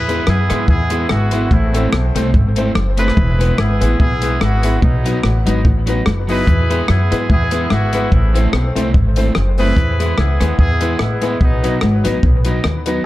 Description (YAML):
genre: ska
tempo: 146 BPM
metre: 4/4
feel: swing 56% on 8ths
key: E major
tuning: A4 = 441 Hz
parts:
  - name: bright horn section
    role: melody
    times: 0.0-12.2 s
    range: F#3 to B4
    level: -22 LUFS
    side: equal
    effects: dub echo
  - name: upright bass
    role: bass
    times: 0.0-13.0 s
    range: E1 to G#2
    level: -16 LUFS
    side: equal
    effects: none
  - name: electric guitar at the edge of break-up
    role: accompaniment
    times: 0.1-13.0 s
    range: F#3 to E4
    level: -24 LUFS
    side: right 3 dB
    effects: none
  - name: warm upright piano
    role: stabs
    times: 0.1-13.0 s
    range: B3 to C5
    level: -23 LUFS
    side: left 4 dB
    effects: dub echo
  - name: compact cocktail drum kit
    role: drums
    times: 0.1-13.0 s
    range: hi-hat, kick drum, rim click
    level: -18 LUFS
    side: equal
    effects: none
  - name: semi-hollow electric guitar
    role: riff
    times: 0.3-12.8 s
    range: E2 to G#3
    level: -26 LUFS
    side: left 3 dB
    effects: none
room: little or no reverb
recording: none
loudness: -13 LUFS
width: side -16 dB against mid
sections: 0.0-13.1 A section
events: none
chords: 0.0 E; 1.5 Am; 3.2 E; 4.8 B; 6.5 E; 8.1 Am; 9.8 E; 11.4 B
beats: 0.27 0.69 1.10 | 1.51 1.93 2.34 2.76 | 3.17 3.58 4.00 4.41 | 4.83 5.24 5.65 6.06 | 6.47 6.89 7.30 7.71 | 8.12 8.53 8.94 9.35 | 9.76 10.18 10.59 11.00 | 11.41 11.82 12.23 12.64